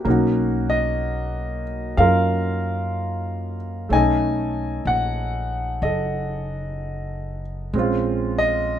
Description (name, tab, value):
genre	jazz ballad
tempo	62 BPM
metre	4/4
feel	swing 68% on 8ths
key	unclear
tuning	A4 = 438 Hz
part	warm concert grand piano	accompaniment	0.0-8.8 s	Ab3 to G#5	-22 LUFS	equal	none
part	upright bass	bass	0.1-8.8 s	F#1 to F#2	-25 LUFS	equal	none
room	moderate club ambience, RT60 0.5 s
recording	minimal, uncompressed stereo recording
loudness	-20 LUFS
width	side -10 dB against mid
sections	0.0-8.8 A section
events	none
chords	0.1 Bmaj9; 3.9 B13; 7.7 Bbm9